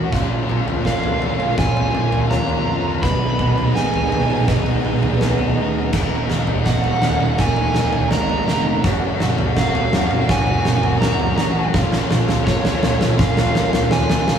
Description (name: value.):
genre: post-rock.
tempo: 83 BPM.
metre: 4/4.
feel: straight.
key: unclear.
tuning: A4 = 439 Hz.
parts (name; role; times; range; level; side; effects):
clear studio string section; sustained chords; 0.0-14.4 s; Eb3 to Ab5; -33 LUFS; right 2 dB; none.
electric guitar through a small old amp; arpeggios; 0.0-14.4 s; Eb2 to Gb4; -28 LUFS; right 2 dB; spring reverb.
felt-muted upright piano; arpeggios; 0.0-14.4 s; Bb4 to Gb5; -33 LUFS; right 5 dB; none.
crunchy overdriven guitar; riff; 0.0-14.4 s; Bb3 to Gb4; -24 LUFS; left 4 dB; none.
fuzz fingered electric bass; bass; 0.0-14.4 s; Eb1 to F2; -23 LUFS; right 1 dB; overdrive.
huge arena drum kit; drums; 0.1-14.4 s; crash cymbal, kick drum, snare drum, toms; -19 LUFS; right 1 dB; none.
overdriven slide guitar; melody; 0.9-14.4 s; Db5 to Cb6; -23 LUFS; right 4 dB; none.
room: moderate studio reverb, RT60 0.5 s.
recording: band playing live in one room, small room ambience.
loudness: -16 LUFS.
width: side -8 dB against mid.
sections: 0.0-14.4 A section.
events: build-up 0.0-14.4; drum fill 0.0-14.4.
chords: 0.1 Bbm7; 3.0 Abm; 5.9 Ebm; 8.8 Gbmaj7; 11.7 Bbm7.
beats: | 0.12 0.84 1.57 2.30 | 3.03 3.75 4.48 5.21 | 5.93 6.66 7.39 8.11 | 8.84 9.57 10.29 11.02 | 11.74 12.47 13.19 13.92.